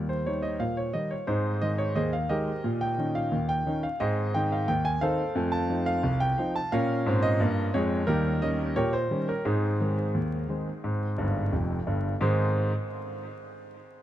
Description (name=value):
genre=ragtime piano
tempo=88 BPM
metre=2/4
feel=straight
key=Ab major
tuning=A4 = 440 Hz
part: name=warm concert grand piano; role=solo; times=0.0-12.7 s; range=F1 to A5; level=-25 LUFS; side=equal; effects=tape echo
room=light reverb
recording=dry, close 1970s-style studio recording, vinyl crackle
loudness=-25 LUFS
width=side -12 dB against mid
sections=0.0-12.2 A section; 12.2-13.6 B section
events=grand piano fill 11.2-12.2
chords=0.0 Eb; 1.3 Ab; 2.6 Eb7/Bb; 4.0 Ab; 5.4 F7; 6.7 Bbm; 8.1 Eb7; 9.4 Ab